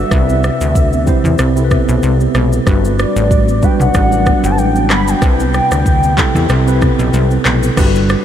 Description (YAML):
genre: afrobeats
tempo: 94 BPM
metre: 4/4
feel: swing 55% on 16ths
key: unclear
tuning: A4 = 438 Hz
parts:
  - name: warm velvety synth lead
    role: melody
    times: 0.0-7.0 s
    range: D5 to B5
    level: -19 LUFS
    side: equal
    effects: chorus, ping-pong delay
  - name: tine electric piano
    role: accompaniment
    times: 0.0-8.2 s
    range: C3 to D5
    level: -16 LUFS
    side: left 1 dB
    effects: medium stereo tremolo
  - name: plucky analog bass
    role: bass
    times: 0.0-8.2 s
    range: G1 to E2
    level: -14 LUFS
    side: equal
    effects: none
  - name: afro-pop drum kit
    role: drums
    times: 0.1-8.2 s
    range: crash cymbal, handclaps, kick drum, rim click, shaker, toms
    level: -16 LUFS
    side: equal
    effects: none
  - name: congas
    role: percussion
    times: 0.3-7.6 s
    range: none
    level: -25 LUFS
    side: right 7 dB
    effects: none
  - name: granular cloud pad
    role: sustained chords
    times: 7.8-8.2 s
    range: none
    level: barely audible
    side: none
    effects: none
room: moderate huge ambient reverb, RT60 8.0 s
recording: dreamy mix soaked in reverb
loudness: -10 LUFS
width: side -10 dB against mid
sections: 0.0-7.8 A section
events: none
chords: 0.1 Cmaj7; 2.7 Gmaj7; 5.2 Cmaj7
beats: | 0.12 0.76 1.39 2.03 | 2.67 3.31 3.95 4.58 | 5.22 5.86 6.50 7.14 | 7.78